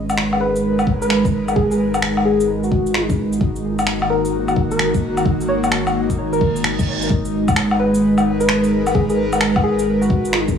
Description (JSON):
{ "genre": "future garage", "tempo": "130 BPM", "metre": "4/4", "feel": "swing 65% on 16ths", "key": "G# minor", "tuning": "A4 = 440 Hz", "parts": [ { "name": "airy breathy pad", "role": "sustained chords", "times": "0.0-10.6 s", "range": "D#3 to D#5", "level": "-19 LUFS", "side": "equal", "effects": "chorus, sidechain pumping" }, { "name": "warm sub bass", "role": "bass", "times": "0.0-10.6 s", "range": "G#1", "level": "-26 LUFS", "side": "right 2 dB", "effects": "tube saturation, sidechain pumping" }, { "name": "electronic shaker, woodblock and finger snaps", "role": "drums", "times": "0.1-10.5 s", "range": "none", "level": "-21 LUFS", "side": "left 2 dB", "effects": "none" }, { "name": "soft struck synth lead", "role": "melody", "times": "0.4-10.5 s", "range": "F#4 to C#5", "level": "-23 LUFS", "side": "left 2 dB", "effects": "chorus, phaser, dub echo" }, { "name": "electronic kick drum", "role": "drums", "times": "0.9-10.5 s", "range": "none", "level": "-19 LUFS", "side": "left 1 dB", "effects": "none" }, { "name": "reverse cymbal", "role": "sound effects", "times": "6.4-7.1 s", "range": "none", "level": "-28 LUFS", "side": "right 5 dB", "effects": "none" } ], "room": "moderate scoring stage reverb, RT60 1.5 s", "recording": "small room ambience", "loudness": "-15 LUFS", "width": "side -7 dB against mid", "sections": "0.0-7.1 A section; 7.1-10.6 B section", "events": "reverse cymbal 6.4-7.1", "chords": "0.0 G#m; 3.4 D#m/G#; 7.1 G#m7", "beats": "0.18 0.64 1.10 | 1.56 2.02 2.48 2.95 | 3.41 3.87 4.33 4.79 | 5.25 5.72 6.18 6.64 | 7.10 7.56 8.02 8.48 | 8.95 9.41 9.87 10.33" }